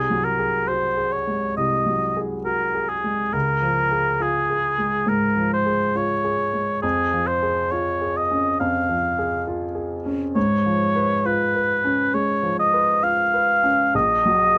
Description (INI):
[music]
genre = classical, romantic duo for oboe and grand piano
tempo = 68 BPM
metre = 4/4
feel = rubato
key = Db major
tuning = A4 = 440 Hz
[part]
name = warm oboe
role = melody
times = 0.0-14.6 s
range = Ab4 to F5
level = -22 LUFS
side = equal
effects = none
[part]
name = clear grand piano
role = accompaniment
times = 0.0-14.6 s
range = A#1 to B4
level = -26 LUFS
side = equal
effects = none
[sound]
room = light reverb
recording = close, detailed microphones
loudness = -21 LUFS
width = mono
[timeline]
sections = 0.0-14.6 A section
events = none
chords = 0.0 Ab7/C; 3.3 Db; 6.8 Db/F; 10.4 C#7/G#; 13.9 F#/A#